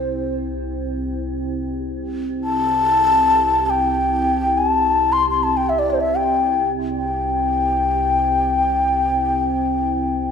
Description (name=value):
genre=world meditative, free-time meditation music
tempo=free time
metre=none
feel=none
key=unclear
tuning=A4 = 440 Hz
part: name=breathy reedy low xiao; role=melody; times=0.0-10.3 s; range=C5 to C6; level=-18 LUFS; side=left 3 dB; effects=tape echo
part: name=icy glass pad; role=drone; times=0.0-10.3 s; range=C2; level=-23 LUFS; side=right 1 dB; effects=chorus, built-in reverb
room=wet scoring stage reverb, RT60 1.5 s, small room reverb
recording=none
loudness=-17 LUFS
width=side -6 dB against mid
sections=0.0-1.7 A section; 1.7-10.3 A section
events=none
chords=none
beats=free time